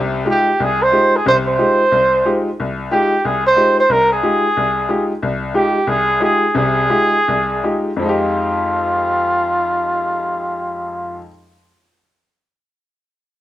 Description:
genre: jazz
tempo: 155-182 BPM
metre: 4/4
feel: swing 64% on 8ths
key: F minor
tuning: A4 = 440 Hz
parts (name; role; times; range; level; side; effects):
- bright upright piano; accompaniment; 0.0-11.3 s; C2 to G4; -19 LUFS; left 1 dB; none
- mellow trumpet; melody; 0.3-11.2 s; F4 to C5; -15 LUFS; right 1 dB; none
room: light reverb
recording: none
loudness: -14 LUFS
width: side -13 dB against mid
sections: 0.0-8.0 A section; 8.0-11.1 B section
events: slowing down 5.2-8.0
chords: 0.0 Fm9

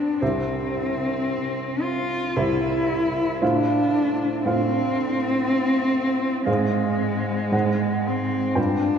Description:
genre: classical, romantic duo for cello and grand piano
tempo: 52-61 BPM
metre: 3/4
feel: rubato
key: unclear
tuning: A4 = 443 Hz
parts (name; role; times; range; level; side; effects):
- warm cello; melody; 0.0-9.0 s; Ab3 to F4; -22 LUFS; left 1 dB; none
- clear baby grand piano; accompaniment; 0.0-9.0 s; C2 to G5; -24 LUFS; right 2 dB; none
room: wet cathedral reverb, RT60 5.7 s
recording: none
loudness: -20 LUFS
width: side -7 dB against mid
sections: 0.0-9.0 A section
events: none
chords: 0.2 C; 3.4 F/A; 6.5 Fm/Ab; 7.5 Ab7

